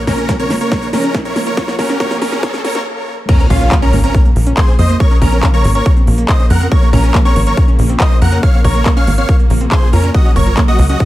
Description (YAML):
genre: uplifting trance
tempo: 140 BPM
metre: 4/4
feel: straight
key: Bb minor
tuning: A4 = 440 Hz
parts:
  - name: big supersaw lead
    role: melody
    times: 0.0-11.1 s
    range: Db4 to Gb5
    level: -19 LUFS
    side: equal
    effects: sidechain pumping, digital delay
  - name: warm symphonic string section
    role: sustained chords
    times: 0.0-11.1 s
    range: Db3 to Bb3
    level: -23 LUFS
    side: left 1 dB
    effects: sidechain pumping
  - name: analog pluck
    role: arpeggios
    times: 0.0-11.1 s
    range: Bb2 to F4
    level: -22 LUFS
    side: right 3 dB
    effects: chorus, sidechain pumping, digital delay
  - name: riser and impact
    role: sound effects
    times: 0.2-5.0 s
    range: none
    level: -22 LUFS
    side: equal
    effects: none
  - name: tight sequencer bass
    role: bass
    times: 0.1-11.0 s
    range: Gb1 to F2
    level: -13 LUFS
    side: equal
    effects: sidechain pumping
  - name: big-room dance drum kit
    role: drums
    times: 0.1-11.1 s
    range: crash cymbal, handclaps, hi-hat, snare drum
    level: -21 LUFS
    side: equal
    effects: sidechain pumping on hats, sidechain pumping on cymbals
  - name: electronic kick drum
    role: drums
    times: 0.1-11.1 s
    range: none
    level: -12 LUFS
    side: equal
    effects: none
  - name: plucky unison lead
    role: second line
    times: 3.3-11.1 s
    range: F5 to Gb6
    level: -23 LUFS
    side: equal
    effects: sidechain pumping, digital delay
room: digital ambience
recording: high-pass filter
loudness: -10 LUFS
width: side -15 dB against mid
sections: 0.0-3.3 A section; 3.3-11.1 B section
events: build-up 0.0-3.3; drum fill 0.0-2.9; riser 0.2-2.9; filter sweep on synth pluck 0.0-3.3; filter sweep 0.0-3.3; break 2.9-3.3; drop 3.3-11.1; impact 3.3-5.0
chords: 0.0 Bbm; 10.1 Gb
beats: 0.29 0.72 1.15 | 1.57 2.00 2.43 2.86 | 3.29 3.72 4.14 4.57 | 5.00 5.43 5.86 6.29 | 6.72 7.14 7.57 8.00 | 8.43 8.86 9.29 9.72 | 10.14 10.57 11.00